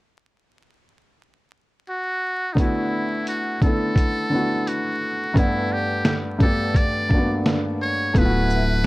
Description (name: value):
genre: lo-fi hip hop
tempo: 86 BPM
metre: 4/4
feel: swing 65% on 16ths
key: D major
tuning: A4 = 440 Hz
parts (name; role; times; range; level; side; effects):
- trumpet with metal mute; melody; 1.9-8.9 s; Eb4 to D5; -25 LUFS; equal; none
- felt-muted upright piano; accompaniment; 2.5-8.9 s; G2 to F#5; -23 LUFS; equal; none
- lo-fi sampler-style drum kit; drums; 2.6-8.9 s; hi-hat, kick drum, shaker, snare drum; -19 LUFS; equal; none
- saturated sub bass; bass; 8.1-8.9 s; D1; -21 LUFS; equal; none
- hollow soft pad; sustained chords; 8.2-8.9 s; B4 to F#5; -33 LUFS; left 1 dB; ensemble chorus
room: little or no reverb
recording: dry, gritty hardware recording, vinyl crackle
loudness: -19 LUFS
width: side -20 dB against mid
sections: 0.0-2.6 A section; 2.6-8.2 B section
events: none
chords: 0.0 N.C.; 2.6 D69; 5.4 Gmaj7; 8.2 D69